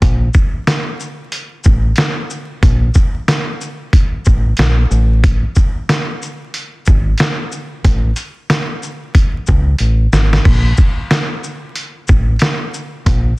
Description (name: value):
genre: hip hop, boom-bap hip-hop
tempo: 92 BPM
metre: 4/4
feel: swing 61% on 16ths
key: unclear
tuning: A4 = 441 Hz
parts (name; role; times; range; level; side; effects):
- deep dub fingered electric bass; bass; 0.0-13.3 s; G#1 to C#2; -13 LUFS; equal; none
- trip hop sampler-style drum kit; drums; 0.0-13.2 s; crash cymbal, hi-hat, kick drum, shaker, snare drum; -14 LUFS; equal; vintage 12-bit sampler grit
room: little or no reverb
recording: dense, heavily limited modern master, vinyl crackle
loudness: -12 LUFS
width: side -22 dB against mid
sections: 0.0-13.4 A section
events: drum fill 9.8-10.5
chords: none